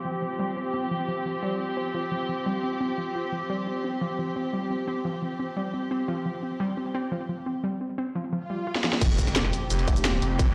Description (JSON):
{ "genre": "dark technical drum and bass", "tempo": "174 BPM", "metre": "4/4", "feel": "straight", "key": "unclear", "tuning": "A4 = 436 Hz", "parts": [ { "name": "dark studio string section", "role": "sustained chords", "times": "0.0-10.5 s", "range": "F3 to G4", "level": "-33 LUFS", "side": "equal", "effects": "sidechain pumping, low-pass filter" }, { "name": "warbly dusty pluck", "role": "arpeggios", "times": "0.0-9.0 s", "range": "F3 to F4", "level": "-33 LUFS", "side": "equal", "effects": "chorus, cassette tape, sidechain pumping, tape echo" }, { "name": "downlifter, swell and impact", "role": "sound effects", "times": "0.0-0.7, 8.5-10.4 s", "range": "none", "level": "-37 LUFS", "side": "equal", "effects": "none" }, { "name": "drum and bass drum kit", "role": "drums", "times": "8.8-10.5 s", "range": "crash cymbal, hi-hat, shaker, snare drum", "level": "-29 LUFS", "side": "equal", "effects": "low-pass filter on hats, low-pass filter on snare, low-pass filter on cymbals, low-pass filter on perc" }, { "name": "phased detuned saw bass", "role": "bass", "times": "9.0-10.5 s", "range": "F1", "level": "-29 LUFS", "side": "equal", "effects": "phaser, overdrive, sidechain pumping" }, { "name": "electronic kick drum", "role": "drums", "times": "9.0-10.5 s", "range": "none", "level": "-26 LUFS", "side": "equal", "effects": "none" }, { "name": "pulsing pluck wobble bass", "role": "bass", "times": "9.9-10.2 s", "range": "F1", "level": "-29 LUFS", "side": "equal", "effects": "distortion, chorus" } ], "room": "moderate digital room reverb, RT60 1.0 s", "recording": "played on a big sound system in a bare room, stone room reverb", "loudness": "-28 LUFS", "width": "mono", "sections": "0.0-9.0 A section; 9.0-10.5 B section", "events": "filter sweep on synth arpeggio sound 0.0-9.0; swell 8.5-9.0; drum fill 8.8; drop 9.0-10.5; impact 9.0-10.4", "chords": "0.0 F5" }